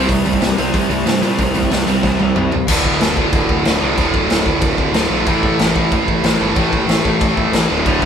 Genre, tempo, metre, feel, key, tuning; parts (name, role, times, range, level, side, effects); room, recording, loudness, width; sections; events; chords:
punk rock; 185 BPM; 4/4; straight; A4 = 440 Hz
overdriven electric guitar; riff; 0.0-2.5, 7.9-8.1 s; D2 to C5; -19 LUFS; right 1 dB
sludgy distorted guitar; riff; 0.0-8.1 s; D2 to A3; -19 LUFS; left 3 dB; overdrive
tight distorted guitar; riff; 0.0-8.1 s; D2 to A3; -20 LUFS; right 7 dB; distortion
fuzz picked electric bass; bass; 0.0-8.1 s; D1 to C3; -22 LUFS; left 1 dB; overdrive
raw garage drum kit; drums; 0.1-8.1 s; crash cymbal, hi-hat, kick drum, snare drum, toms; -18 LUFS; equal
light reverb; band playing live in one room; -13 LUFS; side -8 dB against mid
0.0-2.7 A section; 2.7-8.1 B section
drum fill 2.0-2.7
0.0 C; 2.7 D5; 5.3 A5